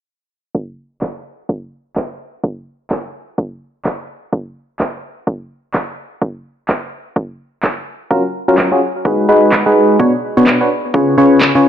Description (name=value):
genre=piano house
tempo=127 BPM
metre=4/4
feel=swing 59% on 16ths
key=F# major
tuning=A4 = 440 Hz
part: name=electronic kick drum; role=drums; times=0.5-11.5 s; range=none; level=-20 LUFS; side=equal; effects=high-pass filter on kick
part: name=electronic handclaps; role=drums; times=1.0-11.5 s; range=none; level=-20 LUFS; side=right 1 dB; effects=none
part: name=barking FM electric piano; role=riff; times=8.1-11.7 s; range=B2 to C#5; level=-10 LUFS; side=equal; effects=chorus, sidechain pumping, dub echo
room=light reverb, digital ambience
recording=low-pass filter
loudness=-14 LUFS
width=side -9 dB against mid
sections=0.5-11.7 A section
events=filter sweep 0.5-11.7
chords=0.5 N.C.; 8.1 F#maj7; 9.1 G#m7; 10.0 Bmadd9; 10.7 C#7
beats=| 0.55 1.02 1.49 1.96 | 2.44 2.91 3.38 3.85 | 4.33 4.80 5.27 5.74 | 6.22 6.69 7.16 7.63 | 8.11 8.58 9.05 9.52 | 10.00 10.47 10.94 11.41